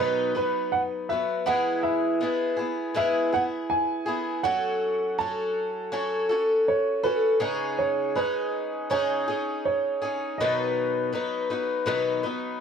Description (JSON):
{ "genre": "pop", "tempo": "81 BPM", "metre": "4/4", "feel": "swing 60% on 16ths", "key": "E major", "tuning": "A4 = 441 Hz", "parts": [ { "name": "warm upright piano", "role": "melody", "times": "0.0-12.6 s", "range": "B4 to A5", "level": "-27 LUFS", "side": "right 2 dB", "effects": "none" }, { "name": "picked twelve-string acoustic guitar", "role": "accompaniment", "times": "0.0-12.6 s", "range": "B2 to B4", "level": "-26 LUFS", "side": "left 1 dB", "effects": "none" } ], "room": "light reverb", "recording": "none", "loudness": "-24 LUFS", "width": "side -7 dB against mid", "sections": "0.0-12.6 A section", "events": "none", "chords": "0.0 B; 1.5 E; 4.4 F#m; 7.4 C#sus2; 10.4 B" }